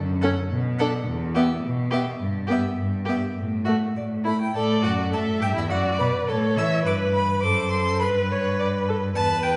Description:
quick classical-period movement for string quartet; 104 BPM; 2/4; straight; D major; A4 = 440 Hz
rich cello; bass; 0.0-9.6 s; E2 to E3; -27 LUFS; equal
clear violin; melody; 0.2-9.6 s; D5 to E6; -32 LUFS; equal
rich violin; second line; 0.2-9.6 s; E4 to E5; -31 LUFS; equal
rich viola; accompaniment; 0.2-9.6 s; A3 to E5; -29 LUFS; equal
wet recital hall reverb, RT60 1.8 s; heard from further back in the room, nothing above 10.5 kHz; -24 LUFS; mono
0.0-4.6 A section; 4.6-9.6 B section
0.0 F#m; 0.5 Bm7; 1.1 Em; 2.2 Em/G; 3.4 A5; 4.6 D/A; 5.1 A5; 5.7 D/F#; 6.9 G; 7.4 D7/F#; 8.0 G
0.51 | 1.07 1.64 | 2.21 2.79 | 3.37 3.97 | 4.56 5.14 | 5.72 6.30 | 6.88 7.45 | 8.02 8.59 | 9.16

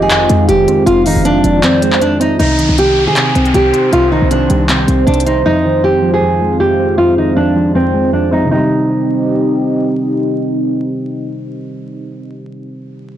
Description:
hip hop, trap; 157 BPM; 4/4; half-time; C minor; A4 = 439 Hz
nylon-string guitar; melody; 0.0-9.6 s; C4 to Ab4; -13 LUFS; equal; low-pass filter
hollow clarinet-like synth lead; second line; 0.0-2.0 s; C5 to F5; -19 LUFS; left 1 dB; chorus, phaser, ping-pong delay
soft electric-piano-like synth keys; accompaniment; 0.0-13.2 s; F2 to C5; -17 LUFS; equal; chorus, low-pass filter
dark analog pad; sustained chords; 0.0-12.3 s; Eb3 to G5; -18 LUFS; right 1 dB; chorus, phaser, low-pass filter
short 808-style bass; bass; 0.0-5.4 s; F1 to Eb3; -16 LUFS; equal
trap drum kit; drums; 0.1-5.4 s; handclaps, hi-hat; -17 LUFS; left 1 dB
downlifter; sound effects; 2.4-5.5 s; -22 LUFS; equal
light reverb, digital ambience; blown-out, overdriven recording, vinyl crackle, overdrive; -10 LUFS; side -11 dB against mid
0.0-2.4 A section; 2.4-8.5 B section; 8.5-11.6 C section
kick muted 1.6-2.4; filter sweep 2.4-8.5
0.0 Fm7; 2.4 Cm; 5.5 Fm7; 8.5 Cm
0.10 0.49 | 0.87 1.25 1.63 2.02 | 2.40 2.78 3.16 3.54 | 3.93 4.31 4.69 5.07 | 5.46 5.84 6.22 6.60 | 6.98 7.37 7.75 8.13 | 8.51 8.89 9.28 9.66 | 10.04 10.42 10.81 11.19

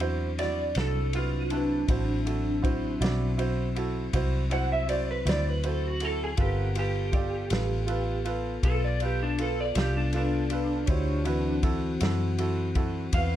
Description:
slow blues; 53 BPM (dotted quarters); 12/8; straight; D mixolydian; A4 = 440 Hz
electric guitar through a small old amp; second line; 0.0-13.4 s; D4 to F#5; -31 LUFS; equal; ensemble chorus
warm upright piano; accompaniment; 0.0-13.4 s; E4 to D5; -34 LUFS; right 6 dB
mellow tonewheel organ; sustained chords; 0.0-13.4 s; E3 to F#5; -35 LUFS; left 2 dB; slow rotary speaker
vintage muted fingered electric bass; bass; 0.0-13.4 s; G1 to F#2; -29 LUFS; equal
vintage drum kit; drums; 0.0-13.3 s; kick drum, ride cymbal, snare drum; -32 LUFS; left 1 dB
light reverb; dark, warm production; -25 LUFS; side -12 dB against mid
0.0-13.4 A section
clean electric guitar solo 0.0-13.4
0.0 D9; 6.4 G9; 10.9 D9
0.76 | 1.89 3.01 4.14 5.26 | 6.38 7.51 8.63 9.76 | 10.88 12.01 13.13

